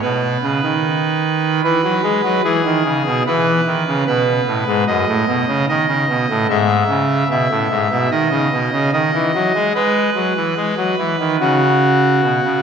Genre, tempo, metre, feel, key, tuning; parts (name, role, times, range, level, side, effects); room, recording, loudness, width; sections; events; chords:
classical, chorale-style piece for pipe organ; 74 BPM; 4/4; straight; E major from 3.3 s; A4 = 440 Hz
pipe organ, trumpet; solo; 0.0-12.6 s; F#2 to E5; -14 LUFS; right 1 dB
wet concert hall reverb, RT60 1.7 s; -14 LUFS; side -7 dB against mid
0.0-12.6 A section
0.0 B; 1.6 E; 4.9 B7/F#; 6.5 E/G#; 8.1 N.C.; 9.8 E; 11.4 N.C.